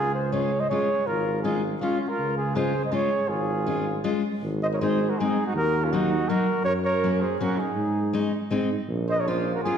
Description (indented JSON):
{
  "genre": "alpine folk, alpine dance band",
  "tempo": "162 BPM",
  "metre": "3/4",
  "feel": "straight",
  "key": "Db major",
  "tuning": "A4 = 440 Hz",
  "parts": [
    { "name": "mellow flugelhorn", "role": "melody", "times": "0.0-9.8 s", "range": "F4 to Eb5", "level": "-27 LUFS", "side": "right 1 dB", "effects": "none" },
    { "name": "warm trumpet", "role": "second line", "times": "0.0-9.8 s", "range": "Db4 to C5", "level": "-32 LUFS", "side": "right 4 dB", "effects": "none" },
    { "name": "warm tuba", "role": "bass", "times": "0.0-9.6 s", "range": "Ab1 to Ab2", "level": "-28 LUFS", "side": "right 1 dB", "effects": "none" },
    { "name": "fingerpicked steel-string acoustic guitar", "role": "accompaniment", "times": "0.3-9.8 s", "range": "Gb3 to F4", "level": "-28 LUFS", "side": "left 3 dB", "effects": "none" }
  ],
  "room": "wet recital hall reverb, RT60 1.4 s",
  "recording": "heard from further back in the room",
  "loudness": "-22 LUFS",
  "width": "side -8 dB against mid",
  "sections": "0.0-4.4 A section; 4.4-9.8 B section",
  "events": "none",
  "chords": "0.0 Db; 4.4 Ab; 5.5 Ebm; 6.6 Gb; 7.8 Absus4; 8.5 Ab; 8.9 Bbm"
}